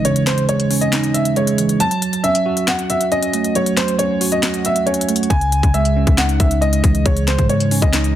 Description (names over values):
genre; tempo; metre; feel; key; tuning
hip hop, trap; 137 BPM; 4/4; half-time; C# harmonic minor; A4 = 440 Hz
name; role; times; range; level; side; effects
dark baby grand piano; melody; 0.0-8.1 s; B#4 to A5; -20 LUFS; equal; ping-pong delay
tine electric piano; accompaniment; 0.0-8.2 s; C#3 to F#5; -18 LUFS; right 3 dB; analog chorus
trap drum kit; drums; 0.0-8.1 s; handclaps, hi-hat, kick drum, snare drum; -19 LUFS; left 1 dB; overdrive
clean 808-style bass; bass; 5.3-8.1 s; C#2 to G#2; -18 LUFS; left 1 dB; none
room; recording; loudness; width
little or no reverb; dense, heavily limited modern master; -14 LUFS; side -11 dB against mid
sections
0.0-8.2 A section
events
break 0.0-5.3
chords
0.0 C#madd9; 1.8 F#m; 5.3 C#madd9